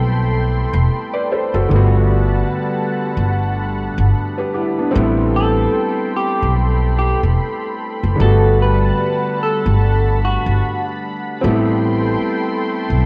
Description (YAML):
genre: lo-fi hip hop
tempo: 74 BPM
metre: 4/4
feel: swing 60% on 16ths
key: G major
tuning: A4 = 439 Hz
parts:
  - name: felt-muted upright piano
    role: accompaniment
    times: 0.0-13.1 s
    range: D3 to D5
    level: -22 LUFS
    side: equal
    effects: cassette tape, low-pass filter
  - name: lush unison pad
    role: sustained chords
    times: 0.0-13.1 s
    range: G3 to C6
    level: -27 LUFS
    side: equal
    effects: chorus, low-pass filter, cassette tape
  - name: upright bass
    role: bass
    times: 0.0-13.1 s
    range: E1 to B1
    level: -18 LUFS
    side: equal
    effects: none
  - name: electric guitar through a small old amp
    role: melody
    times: 5.4-10.8 s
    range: F#4 to B4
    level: -23 LUFS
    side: equal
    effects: lush chorus, low-pass filter, cassette tape, tape echo
room: moderate spring reverb, RT60 1.5 s, small room ambience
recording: home recording on cassette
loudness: -17 LUFS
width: mono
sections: 0.0-13.1 A section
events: none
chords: 0.0 Am9; 1.7 Gmaj9; 4.9 Am9; 8.2 Gmaj9; 11.4 Am9